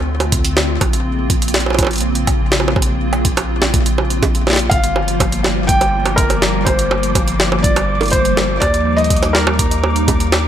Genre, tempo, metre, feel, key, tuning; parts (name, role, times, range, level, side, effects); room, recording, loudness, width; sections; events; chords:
IDM; 123 BPM; 4/4; straight; A4 = 437 Hz
hollow soft pad; sustained chords; 0.0-10.5 s; Db3 to F4; -21 LUFS; equal; ensemble chorus
round analog bass; bass; 0.0-10.5 s; G1 to Eb2; -20 LUFS; equal
jungle sampler-style drum kit; drums; 0.2-10.4 s; bongos, hi-hat, snare drum; -18 LUFS; right 2 dB
electronic kick drum; drums; 0.3-10.2 s; -18 LUFS; equal
felt-muted upright piano; melody; 4.7-10.5 s; Bb4 to G5; -19 LUFS; left 1 dB; ping-pong delay
flickering grainy texture; texture; 5.5-10.5 s; D6; -26 LUFS; right 1 dB; built-in reverb
light reverb, digital ambience; -13 LUFS; side -10 dB against mid
0.0-10.5 A section
0.0 Dm7; 0.8 Bbmadd9; 4.7 Gm7; 8.6 Ebmaj7